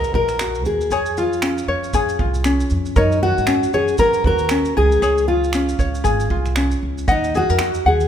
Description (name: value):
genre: acoustic pop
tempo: 117 BPM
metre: 4/4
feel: swing 60% on 16ths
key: Db major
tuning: A4 = 440 Hz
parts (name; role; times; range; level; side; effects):
- fingerpicked steel-string acoustic guitar; melody; 0.0-8.1 s; Eb4 to Bb4; -20 LUFS; equal; none
- ukulele; accompaniment; 0.0-8.1 s; Db4 to Gb5; -20 LUFS; left 3 dB; none
- upright bass; bass; 0.0-8.1 s; Ab1 to Ab2; -22 LUFS; right 1 dB; none
- natural country drum kit; drums; 0.0-8.1 s; finger snaps, kick drum, shaker; -24 LUFS; right 2 dB; none
room: moderate recital hall reverb, RT60 1.8 s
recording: recorded in a church or concert hall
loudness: -16 LUFS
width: side -9 dB against mid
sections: 0.0-8.1 A section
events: none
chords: 0.0 Ebm; 0.9 Db/F; 3.0 Gb; 4.8 Db; 7.1 Ebm